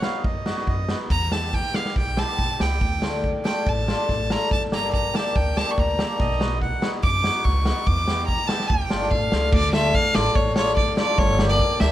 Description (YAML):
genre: klezmer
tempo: 143 BPM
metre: 4/4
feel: straight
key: D harmonic minor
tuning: A4 = 440 Hz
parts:
  - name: bright violin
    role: melody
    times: 0.0-11.9 s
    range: C#5 to D6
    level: -25 LUFS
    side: equal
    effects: analog delay
  - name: accordion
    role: second line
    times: 0.0-1.0, 6.2-6.9 s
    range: D#5 to F#5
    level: -31 LUFS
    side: right 4 dB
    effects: none
  - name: cimbalom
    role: accompaniment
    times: 0.0-11.9 s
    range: A3 to G4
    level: -26 LUFS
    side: left 2 dB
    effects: none
  - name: raw garage drum kit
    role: drums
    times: 0.0-11.9 s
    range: crash cymbal, kick drum, snare drum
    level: -24 LUFS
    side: equal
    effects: none
  - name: upright bass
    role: bass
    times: 0.2-11.9 s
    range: G1 to F#2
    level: -26 LUFS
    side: equal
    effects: none
room: light reverb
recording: close, detailed microphones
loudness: -19 LUFS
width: side -13 dB against mid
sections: 0.0-9.5 A section; 9.5-11.9 B section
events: speeding up 0.0-11.9; violin solo 0.0-9.5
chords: 0.0 B; 1.1 Em; 2.8 Dm; 4.5 Gm; 6.2 B; 7.9 Em; 8.7 Dm; 11.2 Gm